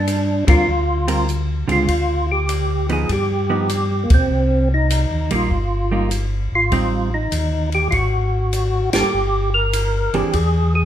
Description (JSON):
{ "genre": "soul jazz organ trio", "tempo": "99 BPM", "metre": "4/4", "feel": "swing 67% on 8ths", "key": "G minor", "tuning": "A4 = 440 Hz", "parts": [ { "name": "percussive tonewheel organ", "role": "melody", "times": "0.0-10.8 s", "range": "Bb3 to Bb4", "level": "-20 LUFS", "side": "equal", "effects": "slow rotary speaker, chorus vibrato" }, { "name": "mellow tonewheel organ", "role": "bass", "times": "0.0-10.8 s", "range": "G1 to D3", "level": "-20 LUFS", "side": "equal", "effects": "chorus vibrato, slow rotary speaker" }, { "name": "compact cocktail drum kit", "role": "drums", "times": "0.1-10.5 s", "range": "hi-hat, kick drum, ride cymbal, snare drum", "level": "-22 LUFS", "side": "equal", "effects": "none" }, { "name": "hollow-body jazz guitar", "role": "accompaniment", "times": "0.5-10.3 s", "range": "D3 to Bb4", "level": "-24 LUFS", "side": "right 3 dB", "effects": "none" } ], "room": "moderate large studio reverb, RT60 1.1 s", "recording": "minimal, uncompressed stereo recording", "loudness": "-16 LUFS", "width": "side -10 dB against mid", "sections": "0.0-10.8 A section", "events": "band accent 0.4-0.7, 4.0-4.3, 8.8-9.1", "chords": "0.0 Gm7; 1.9 G7b9b13/D; 3.1 G7b13; 4.3 Cm7; 6.7 Am7b5; 7.9 Absus2; 9.1 Gm; 10.3 E" }